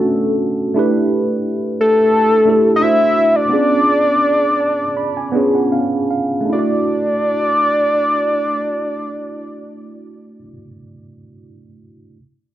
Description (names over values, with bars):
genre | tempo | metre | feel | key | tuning
R&B | 76-89 BPM | 4/4 | swing 54% on 16ths | D major | A4 = 440 Hz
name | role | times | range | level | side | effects
mellow tine electric piano | accompaniment | 0.0-12.2 s | A3 to B5 | -18 LUFS | right 1 dB | overdrive, phaser
fat analog lead | melody | 1.8-10.4 s | A4 to E5 | -14 LUFS | left 1 dB | chorus
room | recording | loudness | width
moderate studio reverb, RT60 0.8 s | none | -13 LUFS | side -12 dB against mid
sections
0.0-6.5 A section; 6.5-9.7 B section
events
slowing down 0.8-6.5; tine electric piano fill 4.2-6.5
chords
0.0 Bm9; 0.8 A7sus4; 2.8 D9; 3.5 C#7b9; 6.5 Dadd9